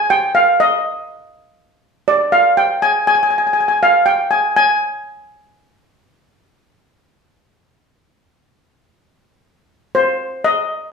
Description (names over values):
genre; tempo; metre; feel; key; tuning
calypso; 122 BPM; 4/4; swing 54% on 16ths; unclear; A4 = 440 Hz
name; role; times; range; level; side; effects
steel pan; solo; 0.0-6.5, 9.9-10.9 s; C5 to Ab5; -13 LUFS; equal; none
room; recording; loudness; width
wet large studio reverb, RT60 0.8 s; band playing live in one room; -13 LUFS; side -5 dB against mid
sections
0.0-10.9 A section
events
none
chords
none